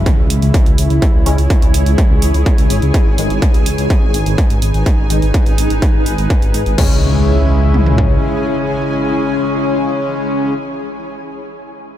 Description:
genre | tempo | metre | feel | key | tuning
melodic techno | 125 BPM | 4/4 | straight | C# minor | A4 = 439 Hz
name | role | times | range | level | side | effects
lush unison pad | sustained chords | 0.0-10.5 s | C#3 to B4 | -24 LUFS | equal | chorus, sidechain pumping
dark detuned saw bass | bass | 0.0-8.2 s | G#1 to G#2 | -15 LUFS | equal | sidechain pumping
impact | sound effects | 0.0-1.0, 6.8-10.6 s | none | -25 LUFS | equal | none
granular cloud pad | texture | 0.4-10.7 s | D#4 to G#5 | -21 LUFS | equal | built-in reverb, sidechain pumping
punchy analog drum machine | drums | 0.1-6.9 s | crash cymbal, hi-hat | -26 LUFS | right 2 dB | none
techno drum kit | drums | 0.1-8.1 s | kick drum, toms | -13 LUFS | equal | distortion
sync-sweep polysynth | stabs | 1.3-10.5 s | G#2 to C#4 | -20 LUFS | left 3 dB | chorus, phaser, cassette tape, sidechain pumping, ping-pong delay
room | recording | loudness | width
digital ambience | none | -11 LUFS | side -12 dB against mid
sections
0.0-6.8 A section; 6.8-10.6 B section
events
impact 0.0-1.0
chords
0.0 C#m; 2.9 G#m; 6.8 C#m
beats
0.06 0.54 | 1.02 1.50 1.98 2.46 | 2.94 3.42 3.90 4.38 | 4.86 5.34 5.82 6.30 | 6.78 7.26 7.74 8.22 | 8.70 9.18 9.66 10.14

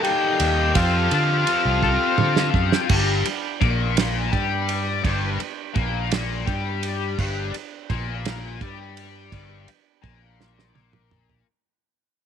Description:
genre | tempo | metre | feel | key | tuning
psychedelic rock | 56 BPM (dotted quarters) | 6/8 | straight | unclear | A4 = 440 Hz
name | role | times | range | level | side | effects
combo organ | melody | 0.0-2.5 s | F4 to G4 | -23 LUFS | equal | spring reverb, tape echo
bright tonewheel organ | sustained chords | 0.0-11.4 s | D4 to B5 | -34 LUFS | right 13 dB | slow rotary speaker
overdriven electric guitar | riff | 0.0-11.5 s | G2 to A4 | -25 LUFS | left 11 dB | flanger
damped 70s drum kit | drums | 0.0-11.5 s | crash cymbal, kick drum, ride cymbal, snare drum, toms | -26 LUFS | right 4 dB | none
picked electric bass | bass | 0.4-11.4 s | G1 to D3 | -25 LUFS | right 1 dB | none
room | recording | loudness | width
light reverb, small room ambience | 1960s-style stereo with parts hard left and right | -20 LUFS | side -8 dB against mid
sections
0.0-2.9 A section; 2.9-11.5 B section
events
drum fill 1.8-2.9, 10.4-11.5; fade-out 2.9-11.5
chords
0.0 Eb; 0.8 Fadd9; 2.9 G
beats
| 0.76 1.83 | 2.90 3.97 | 5.04 6.11 | 7.18 8.26 | 9.33 10.40

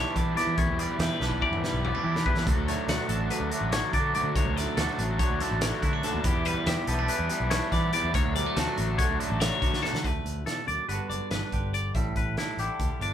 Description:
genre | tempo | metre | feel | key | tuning
math rock and midwest emo | 286 BPM (eighths) | 9/8 | straight | D major | A4 = 440 Hz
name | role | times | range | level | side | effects
twangy electric guitar | accompaniment | 0.0-13.1 s | D2 to G4 | -34 LUFS | right 4 dB | none
twangy electric guitar | arpeggios | 0.0-13.1 s | E4 to F#5 | -31 LUFS | left 3 dB | phaser
raw garage guitar | riff | 0.0-10.0 s | D3 to G4 | -32 LUFS | left 1 dB | overdrive
fingered electric bass | bass | 0.0-13.1 s | F#1 to E3 | -31 LUFS | equal | none
loose indie drum kit | drums | 0.2-13.1 s | hi-hat, kick drum, snare drum, toms | -30 LUFS | equal | none
room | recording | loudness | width
moderate studio ambience, RT60 0.5 s | band playing live in one room | -25 LUFS | side -10 dB against mid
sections
0.0-10.0 A section; 10.0-13.1 B section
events
drum fill 1.2-2.5, 9.7-10.0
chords
0.0 Em7; 2.5 Dmaj7; 6.3 Em7; 8.1 Dmaj7; 10.0 D; 10.9 Gmaj7; 11.9 A7sus4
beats
0.16 0.37 | 0.58 0.79 1.00 1.21 1.42 1.63 1.84 2.05 2.26 | 2.47 2.68 2.89 3.10 3.31 3.52 3.73 3.94 4.15 | 4.36 4.57 4.78 4.99 5.20 5.41 5.62 5.83 6.04 | 6.25 6.46 6.67 6.88 7.09 7.30 7.51 7.72 7.93 | 8.14 8.36 8.56 8.78 8.99 9.20 9.41 9.62 9.83 | 10.04 10.25 10.46 10.68 10.89 11.10 11.31 11.53 11.74 | 11.95 12.16 12.38 12.59 12.80 13.01

